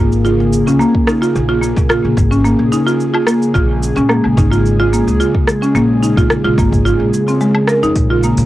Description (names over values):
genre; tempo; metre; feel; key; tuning
organic downtempo; 109 BPM; 4/4; swing 53% on 16ths; Bb minor; A4 = 440 Hz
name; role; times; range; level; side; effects
airy breathy pad; sustained chords; 0.0-8.5 s; Db3 to Ab4; -18 LUFS; equal; chorus, sidechain pumping, cassette tape
buzzing marimba with medium hard mallets; arpeggios; 0.0-8.5 s; Ab3 to Bb4; -15 LUFS; right 1 dB; cassette tape, tape echo
upright bass; bass; 0.0-8.5 s; Ab1 to Bb2; -16 LUFS; equal; tube saturation, sidechain pumping
afro-pop drum kit; drums; 0.1-8.5 s; hi-hat, rim click, shaker, woodblock; -19 LUFS; equal; none
cajon; percussion; 0.4-8.5 s; none; -24 LUFS; left 1 dB; none
electronic kick drum; drums; 0.9-8.1 s; none; -16 LUFS; equal; none
room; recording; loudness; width
moderate booth ambience, RT60 0.2 s; home recording on cassette; -11 LUFS; side -15 dB against mid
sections
0.0-8.5 A section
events
none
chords
0.0 Bbm7; 8.0 Db6